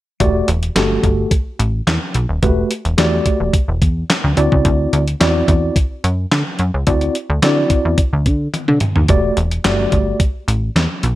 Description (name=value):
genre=early-eighties boogie funk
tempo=108 BPM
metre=4/4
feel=straight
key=E minor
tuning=A4 = 438 Hz
part: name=mellow tine electric piano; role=accompaniment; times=0.2-10.2 s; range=A3 to D5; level=-18 LUFS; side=equal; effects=medium stereo tremolo
part: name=plucky analog bass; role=bass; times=0.2-11.2 s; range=D#1 to D3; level=-17 LUFS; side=equal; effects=none
part: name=clean 12-bit digital drum machine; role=drums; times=0.2-11.2 s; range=handclaps, hi-hat, kick drum, snare drum, toms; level=-17 LUFS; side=equal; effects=gated reverb
room=digital ambience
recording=none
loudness=-14 LUFS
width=side -16 dB against mid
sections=0.2-11.2 A section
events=drum fill 8.5-9.1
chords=0.2 Em11; 4.4 D9; 9.1 Em11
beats=| 0.20 0.76 1.31 1.87 | 2.42 2.98 3.54 4.09 | 4.65 5.20 5.76 6.31 | 6.87 7.42 7.98 8.54 | 9.09 9.65 10.20 10.76